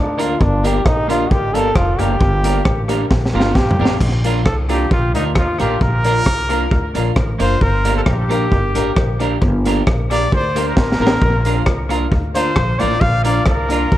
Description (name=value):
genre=ska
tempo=133 BPM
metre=4/4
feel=straight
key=Bb major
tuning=A4 = 439 Hz
part: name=brilliant trombone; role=melody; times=0.0-4.0 s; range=D4 to A4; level=-21 LUFS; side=equal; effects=dub echo
part: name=upright bass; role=bass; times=0.0-14.0 s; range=F1 to Eb2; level=-19 LUFS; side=equal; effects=none
part: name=semi-hollow electric guitar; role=accompaniment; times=0.2-14.0 s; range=Bb3 to Bb4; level=-24 LUFS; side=right 6 dB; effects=none
part: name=warm upright piano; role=stabs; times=0.2-13.9 s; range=Bb3 to Bb4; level=-24 LUFS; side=left 6 dB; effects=dub echo
part: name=crunchy breakbeat drum kit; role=drums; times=0.2-14.0 s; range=crash cymbal, hi-hat, kick drum, rim click, snare drum, toms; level=-18 LUFS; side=equal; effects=dub echo
part: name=breathy trumpet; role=melody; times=4.5-14.0 s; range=Eb4 to F5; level=-20 LUFS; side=equal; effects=dub echo
room=moderate large studio reverb, RT60 1.2 s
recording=dark, warm production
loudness=-14 LUFS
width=side -13 dB against mid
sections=0.0-4.0 A section; 4.0-14.0 A section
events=trombone solo 0.0-4.0; drum fill 3.1-4.0, 10.8-11.2; trumpet solo 4.0-14.0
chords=0.4 Gm; 4.0 Bb; 7.6 Gm; 11.2 Bb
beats=| 0.40 0.85 1.31 1.76 | 2.21 2.66 3.11 3.56 | 4.01 4.46 4.91 5.36 | 5.81 6.26 6.71 7.17 | 7.62 8.07 8.52 8.97 | 9.42 9.87 10.32 10.77 | 11.22 11.67 12.12 12.57 | 13.02 13.47 13.92